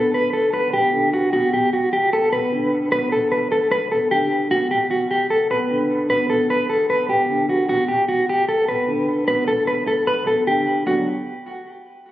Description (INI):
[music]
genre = hip hop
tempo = 151 BPM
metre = 4/4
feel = half-time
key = B minor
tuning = A4 = 442 Hz
[part]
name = mellow electric guitar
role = melody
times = 0.0-11.1 s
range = F#4 to B4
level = -18 LUFS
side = equal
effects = tremolo, digital delay
[part]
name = dark grand piano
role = accompaniment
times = 0.0-11.1 s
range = B2 to D4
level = -24 LUFS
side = equal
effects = none
[sound]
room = light reverb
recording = recorded on a phone in the room, club reverb, compression, nothing above 7.9 kHz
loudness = -17 LUFS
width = side -14 dB against mid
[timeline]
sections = 0.0-7.7 A section; 7.7-10.9 B section; 10.9-12.1 C section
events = none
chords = 0.0 Bm